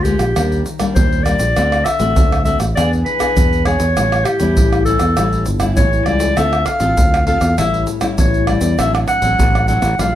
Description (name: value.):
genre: samba and choro.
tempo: 100 BPM.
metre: 4/4.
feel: straight.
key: unclear.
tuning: A4 = 440 Hz.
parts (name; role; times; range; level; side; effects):
warm clarinet; melody; 0.0-10.2 s; G4 to F#5; -18 LUFS; left 1 dB; none.
nylon-string guitar; accompaniment; 0.0-10.2 s; A2 to A4; -21 LUFS; left 4 dB; none.
fingered electric bass; bass; 0.0-10.2 s; G1 to E2; -18 LUFS; equal; none.
egg shaker, pandeiro, surdo and tamborim; percussion; 0.0-10.1 s; none; -18 LUFS; right 1 dB; none.
room: light reverb.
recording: none.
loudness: -13 LUFS.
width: side -12 dB against mid.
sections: 0.0-10.2 A section.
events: none.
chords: 0.4 Ebmaj7; 1.6 D7; 2.8 E7; 4.0 A7; 6.4 Dm7; 7.6 A7; 8.8 D7/A.